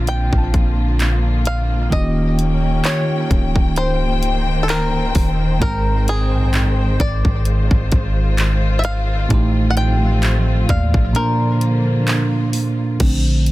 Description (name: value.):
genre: contemporary R&B.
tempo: 65 BPM.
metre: 4/4.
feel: swing 54% on 16ths.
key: Bb major.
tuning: A4 = 440 Hz.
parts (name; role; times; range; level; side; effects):
bell-like tine electric piano; accompaniment; 0.0-13.5 s; Ab2 to G5; -20 LUFS; right 2 dB; phaser.
warm symphonic string section; sustained chords; 0.0-13.0 s; D3 to G5; -24 LUFS; left 2 dB; sidechain pumping.
warm 808-style bass; bass; 0.0-13.5 s; Db1 to Eb2; -18 LUFS; equal; none.
bluegrass banjo; melody; 0.1-12.5 s; Ab4 to G5; -25 LUFS; left 1 dB; tape echo.
trap drum kit; drums; 0.1-13.5 s; crash cymbal, handclaps, hi-hat, kick drum; -19 LUFS; equal; none.
soft synth bell; texture; 0.1-1.7, 10.7-11.6 s; D5 to A5; -36 LUFS; left 4 dB; chorus, phaser, tape echo.
room: little or no reverb.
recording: dense, heavily limited modern master.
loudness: -15 LUFS.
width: side -17 dB against mid.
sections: 0.0-13.0 A section.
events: kick muted 11.2-13.0.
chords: 0.0 Bbmaj7; 1.9 Eb7; 5.6 Abmaj7; 9.3 F7/A; 11.2 Bb; 13.0 Bbmaj7.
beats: 0.08 1.00 | 1.92 2.85 3.77 4.69 | 5.62 6.54 7.46 8.38 | 9.31 10.23 11.15 12.08 | 13.00.